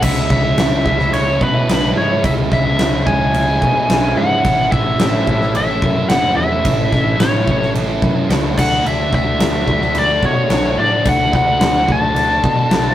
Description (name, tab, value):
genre	classic rock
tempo	109 BPM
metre	4/4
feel	straight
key	unclear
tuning	A4 = 440 Hz
part	biting lead guitar	melody	0.0-12.9 s	B4 to A5	-17 LUFS	left 1 dB	overdrive
part	biting overdriven guitar	riff	0.0-12.9 s	A2 to F#4	-20 LUFS	right 1 dB	none
part	picked electric bass	bass	0.0-12.9 s	F#1 to B2	-21 LUFS	equal	none
part	huge arena drum kit	drums	0.0-12.8 s	crash cymbal, kick drum, snare drum	-18 LUFS	equal	none
room	moderate stone room reverb, RT60 1.2 s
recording	rough rehearsal-room recording, tube saturation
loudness	-13 LUFS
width	side -12 dB against mid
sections	0.0-12.9 A section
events	none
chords	0.0 C#m; 4.4 A; 8.6 D